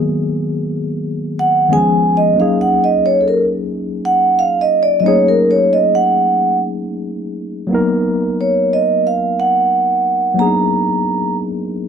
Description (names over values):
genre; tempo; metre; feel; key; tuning
soul; 90 BPM; 4/4; straight; unclear; A4 = 440 Hz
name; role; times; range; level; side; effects
tine electric piano; accompaniment; 0.0-11.9 s; D#3 to A#4; -18 LUFS; left 2 dB; medium stereo tremolo
vibraphone with soft mallets; melody; 1.4-11.3 s; A4 to A#5; -13 LUFS; right 2 dB; none
room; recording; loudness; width
light reverb, small room reverb; none; -13 LUFS; side -7 dB against mid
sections
0.0-7.7 A section; 7.7-11.9 B section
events
vibraphone solo 0.0-7.7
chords
0.0 Bmaj7; 1.7 C#7; 2.4 F#69; 7.7 Bmaj7